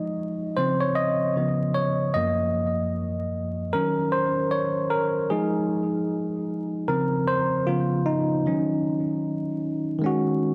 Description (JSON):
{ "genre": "hip hop", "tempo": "76 BPM", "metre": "4/4", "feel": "swing 62% on 16ths", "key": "Eb dorian", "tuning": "A4 = 440 Hz", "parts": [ { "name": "bell-like tine electric piano", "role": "solo", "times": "0.0-10.5 s", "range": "Gb2 to Eb5", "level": "-25 LUFS", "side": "equal", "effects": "cassette tape, low-pass filter, analog delay" } ], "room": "moderate plate reverb, RT60 2.8 s", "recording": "vinyl crackle, lossy compression artefacts", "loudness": "-25 LUFS", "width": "mono", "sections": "0.0-10.0 A section", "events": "tine electric piano solo 0.0-10.0", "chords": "0.0 Fm7; 0.6 Dbmaj9; 1.4 Db7; 2.1 Gbmaj7; 3.7 Ebm7; 5.3 Fm7; 6.9 Dbmaj7; 7.7 Db7; 8.5 Ebm7; 10.0 Ab7sus4", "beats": "| 0.56 1.35 2.14 2.93 | 3.72 4.51 5.30 6.09 | 6.88 7.67 8.46 9.24 | 10.04" }